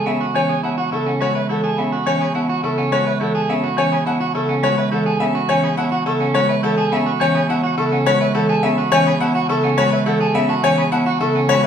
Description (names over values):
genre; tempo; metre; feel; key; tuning
classical, minimalist pattern music; 105 BPM; 3/4; straight; A major; A4 = 436 Hz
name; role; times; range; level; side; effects
electric guitar at the edge of break-up; arpeggios; 0.0-11.7 s; C#4 to B4; -22 LUFS; right 6 dB; none
bright concert grand piano; melody; 0.1-11.7 s; A4 to F#5; -20 LUFS; left 4 dB; none
marimba with hard mallets; accompaniment; 0.1-11.7 s; C#3 to B3; -20 LUFS; right 1 dB; none
silver concert flute; arpeggios; 0.1-11.7 s; E5 to C#6; -26 LUFS; left 1 dB; none
room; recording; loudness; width
wet recital hall reverb, RT60 1.4 s; heard from further back in the room; -16 LUFS; side -8 dB against mid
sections
0.0-11.7 A section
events
none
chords
0.0 Amaj9